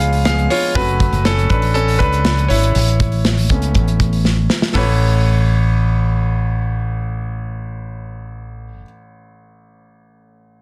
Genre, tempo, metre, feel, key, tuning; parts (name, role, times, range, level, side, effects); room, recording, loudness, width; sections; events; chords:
piano-driven pop; 120 BPM; 4/4; straight; A major; A4 = 441 Hz
clear baby grand piano; accompaniment; 0.0-10.6 s; A1 to E#5; -23 LUFS; equal
mellow fretless electric bass; bass; 0.0-8.8 s; F#1 to C#2; -19 LUFS; equal; lush chorus
modern studio drum kit; drums; 0.0-4.9 s; hi-hat, kick drum, snare drum; -21 LUFS; equal
little or no reverb; dense, heavily limited modern master; -16 LUFS; mono
0.0-4.8 A section; 4.8-8.7 B section
grand piano solo 0.0-4.8; drum fill 4.3-4.8
0.0 C#7; 0.8 F#m; 2.8 Aadd9